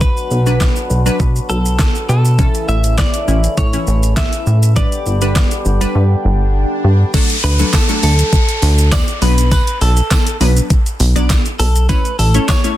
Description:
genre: dance-pop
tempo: 101 BPM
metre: 4/4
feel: straight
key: D major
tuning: A4 = 440 Hz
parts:
  - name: direct-recorded clean electric guitar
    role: melody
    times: 0.0-12.8 s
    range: A4 to E5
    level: -22 LUFS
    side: equal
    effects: dub echo
  - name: wavetable chord stab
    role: accompaniment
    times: 0.0-12.8 s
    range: E3 to D5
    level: -20 LUFS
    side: left 1 dB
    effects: sidechain pumping
  - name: mellow accordion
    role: sustained chords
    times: 0.0-7.1 s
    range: C#3 to G4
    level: -24 LUFS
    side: left 2 dB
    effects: sidechain pumping
  - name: plucky analog bass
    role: bass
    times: 0.0-12.4 s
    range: G1 to B2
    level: -13 LUFS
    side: equal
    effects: sidechain pumping
  - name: pop drum kit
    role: drums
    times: 0.0-12.8 s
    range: crash cymbal, handclaps, hi-hat, kick drum, shaker, snare drum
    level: -15 LUFS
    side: equal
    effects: overdrive
  - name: swell and downlifter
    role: sound effects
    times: 6.2-11.9 s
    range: none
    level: -23 LUFS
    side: equal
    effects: none
  - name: tambourine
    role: percussion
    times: 7.1-12.6 s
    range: none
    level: -31 LUFS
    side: right 12 dB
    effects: none
room: little or no reverb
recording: dense, heavily limited modern master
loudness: -11 LUFS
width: side -14 dB against mid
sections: 0.0-7.1 A section; 7.1-12.8 B section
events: swell 6.2-7.1; drums muted 6.0-7.1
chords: 0.0 Bm; 2.4 A; 4.8 G; 7.1 D; 9.2 Bm; 11.9 A

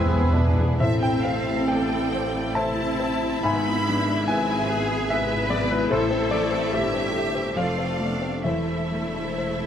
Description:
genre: classical, romantic movement for piano and orchestra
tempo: 60-75 BPM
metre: 3/4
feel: rubato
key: A minor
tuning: A4 = 444 Hz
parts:
  - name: warm baby grand piano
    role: melody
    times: 0.0-9.7 s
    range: E2 to B5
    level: -25 LUFS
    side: left 2 dB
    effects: none
  - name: warm symphonic violin section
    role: melody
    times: 0.0-9.7 s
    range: C5 to G#5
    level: -36 LUFS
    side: left 1 dB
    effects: none
  - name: rich symphonic violin section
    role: second line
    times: 0.0-9.7 s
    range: E4 to B5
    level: -31 LUFS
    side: right 1 dB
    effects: none
  - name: clear bassoon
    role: accompaniment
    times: 0.0-0.8 s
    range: C4 to D4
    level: -32 LUFS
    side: right 3 dB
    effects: none
  - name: rich symphonic viola section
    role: accompaniment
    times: 0.0-9.7 s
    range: G#3 to A4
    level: -32 LUFS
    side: equal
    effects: none
  - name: clear trombone section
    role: sustained chords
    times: 0.0-0.5 s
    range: E3 to E4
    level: -40 LUFS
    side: equal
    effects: none
  - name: bright symphonic double bass section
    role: bass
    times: 0.0-9.7 s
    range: E1 to E2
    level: -31 LUFS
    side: right 3 dB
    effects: none
  - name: warm symphonic cello section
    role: bass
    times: 0.0-9.7 s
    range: G#2 to B4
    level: -30 LUFS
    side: right 1 dB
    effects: none
  - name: timpani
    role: percussion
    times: 0.0-7.1 s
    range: E2 to A2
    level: -24 LUFS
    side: equal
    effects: none
room: moderate scoring stage reverb, RT60 1.6 s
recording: close, detailed microphones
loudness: -21 LUFS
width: side -9 dB against mid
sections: 0.8-9.7 A section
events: timpani fill 0.0-0.8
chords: 0.0 E; 0.8 Am; 3.4 E/G#; 5.9 Am; 7.6 F; 8.4 Am/E

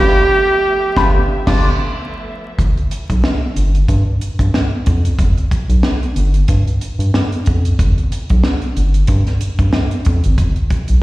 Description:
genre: funk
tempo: 92 BPM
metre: 4/4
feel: swing 56% on 16ths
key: G mixolydian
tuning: A4 = 438 Hz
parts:
  - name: breathy tenor saxophone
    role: melody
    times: 0.0-1.9 s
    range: G4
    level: -14 LUFS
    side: right 2 dB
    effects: slapback echo
  - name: electric guitar with an envelope filter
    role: accompaniment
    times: 0.0-1.7 s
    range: A3 to D5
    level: -21 LUFS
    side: left 4 dB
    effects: wah, vibrato effect, slapback echo
  - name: warm studio string section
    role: sustained chords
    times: 0.0-2.5 s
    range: F3 to E5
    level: -28 LUFS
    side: equal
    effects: none
  - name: round analog bass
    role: bass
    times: 0.0-11.0 s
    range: G1 to G2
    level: -14 LUFS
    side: equal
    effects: none
  - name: compact cocktail drum kit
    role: drums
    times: 1.0-11.0 s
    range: crash cymbal, hi-hat, kick drum, snare drum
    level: -18 LUFS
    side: equal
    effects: none
room: light reverb, studio reverb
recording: live gig heard through the venue's PA, recital hall reverb, vinyl crackle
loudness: -13 LUFS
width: side -18 dB against mid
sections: 0.0-2.6 A section; 2.6-11.0 B section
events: band accent 0.0-2.6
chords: 0.0 G9; 2.6 N.C.

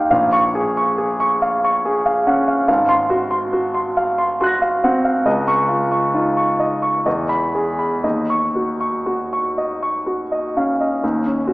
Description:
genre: classical, impressionist solo piano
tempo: 59-72 BPM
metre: 3/4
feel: rubato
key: Eb minor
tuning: A4 = 440 Hz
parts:
  - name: warm concert grand piano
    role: solo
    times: 0.0-11.5 s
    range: Ab1 to Bb6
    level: -16 LUFS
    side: equal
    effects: none
room: wet concert hall reverb, RT60 2.4 s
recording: heard from further back in the room, small speaker sound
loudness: -16 LUFS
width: side -22 dB against mid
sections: 0.0-11.0 A section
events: none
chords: 0.1 Bbm7; 2.7 Ab13; 5.3 Dbadd9; 7.1 Emaj7; 8.0 Ebm7; 11.0 Eb7(no3)

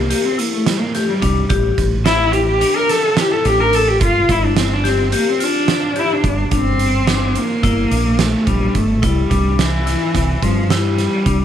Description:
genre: progressive instrumental, band music in an uneven meter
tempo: 215 BPM (eighths)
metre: 9/8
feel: straight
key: G dorian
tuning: A4 = 440 Hz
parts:
  - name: warm cello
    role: melody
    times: 0.0-11.4 s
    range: E3 to Bb4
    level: -17 LUFS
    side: equal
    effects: none
  - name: woody fretless electric bass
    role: bass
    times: 0.0-11.4 s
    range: G1 to G2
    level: -19 LUFS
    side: equal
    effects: none
  - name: vibraphone with hard mallets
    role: arpeggios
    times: 0.1-11.4 s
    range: C4 to G4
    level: -22 LUFS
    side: left 11 dB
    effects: none
  - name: oversized low-tuned drum kit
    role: drums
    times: 0.1-11.4 s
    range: hi-hat, kick drum, snare drum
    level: -20 LUFS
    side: right 4 dB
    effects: none
room: light reverb, small room ambience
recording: 1960s-style stereo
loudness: -14 LUFS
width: side -10 dB against mid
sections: 0.0-6.5 A section; 6.5-11.4 B section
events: cello solo 0.0-6.5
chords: 0.0 C; 1.5 A5; 4.0 G5; 6.5 Gm; 9.0 C

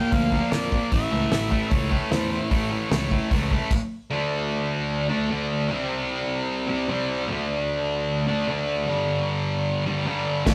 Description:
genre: garage rock duo or trio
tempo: 151 BPM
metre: 4/4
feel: straight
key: D minor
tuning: A4 = 437 Hz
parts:
  - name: warm harmonica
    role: melody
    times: 0.0-3.9 s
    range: C5 to G5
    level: -34 LUFS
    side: equal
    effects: overdrive
  - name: thick fuzz guitar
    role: riff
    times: 0.0-10.5 s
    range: G2 to D4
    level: -26 LUFS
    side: equal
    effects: distortion
  - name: growling fingered electric bass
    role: bass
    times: 0.1-3.6, 10.5 s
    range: A1 to F2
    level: -30 LUFS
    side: equal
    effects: overdrive
  - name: cloth-damped thuddy drum kit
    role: drums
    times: 0.1-3.8, 10.5 s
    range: crash cymbal, hi-hat, kick drum, snare drum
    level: -27 LUFS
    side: equal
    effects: none
room: wet studio reverb, RT60 0.6 s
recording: rough rehearsal-room recording, tube saturation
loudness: -25 LUFS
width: mono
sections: 0.0-4.1 A section; 4.1-10.5 B section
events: stop 3.7-4.1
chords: 0.0 Bb; 0.9 A; 4.1 D5; 5.7 C5; 7.3 D5; 8.9 G5

